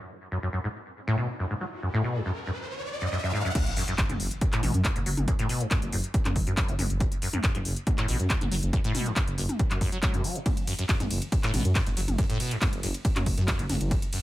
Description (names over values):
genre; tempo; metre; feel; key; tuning
driving peak-time techno; 139 BPM; 4/4; straight; F# minor; A4 = 441 Hz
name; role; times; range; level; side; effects
riser and impact; sound effects; 1.3-5.3 s; none; -35 LUFS; equal; none
acid bass, saw; riff; 0.3-14.2 s; F#2 to A3; -30 LUFS; equal; lush chorus, vintage 12-bit sampler grit, sidechain pumping, dub echo
electronic kick drum; drums; 3.6-14.0 s; none; -27 LUFS; equal; none
techno drum kit; drums; 3.6-14.2 s; crash cymbal, handclaps, hi-hat, ride cymbal, toms; -31 LUFS; equal; sidechain pumping on hats, sidechain pumping on toms, sidechain pumping on cymbals
dark detuned saw bass; bass; 4.1-14.0 s; F#1 to F#2; -28 LUFS; equal; sidechain pumping
room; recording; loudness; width
light reverb; none; -25 LUFS; side -16 dB against mid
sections
0.0-3.6 A section; 3.6-14.2 B section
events
riser 1.3-3.6; drop 3.6-14.2; impact 3.6-5.3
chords
none